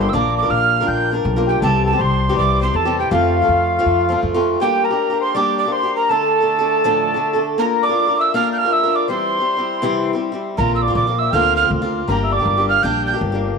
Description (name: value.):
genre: celtic folk, Celtic hornpipe.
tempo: 161 BPM.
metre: 4/4.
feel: swing 63% on 8ths.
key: unclear.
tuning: A4 = 440 Hz.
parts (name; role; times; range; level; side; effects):
breathy mellow mid whistle; melody; 0.0-13.2 s; F5 to G6; -19 LUFS; right 9 dB; none.
mellow accordion; second line; 0.0-13.2 s; F4 to G5; -22 LUFS; left 11 dB; tape echo.
picked swing-style acoustic guitar; accompaniment; 0.0-13.6 s; A2 to Bb4; -20 LUFS; equal; none.
upright bass; bass; 0.0-4.5, 10.6-13.5 s; G1 to F2; -21 LUFS; left 1 dB; none.
room: moderate echo chamber reverb, RT60 1.9 s, small room ambience.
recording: 1960s-style stereo with parts hard left and right.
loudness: -15 LUFS.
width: side -5 dB against mid.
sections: 0.0-4.6 A section; 4.6-13.6 B section.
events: none.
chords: 0.1 Bb; 1.6 C; 3.1 F; 4.6 Gm; 6.1 Dm; 7.6 Bb; 9.1 C; 10.6 Bbadd9; 12.1 Gm.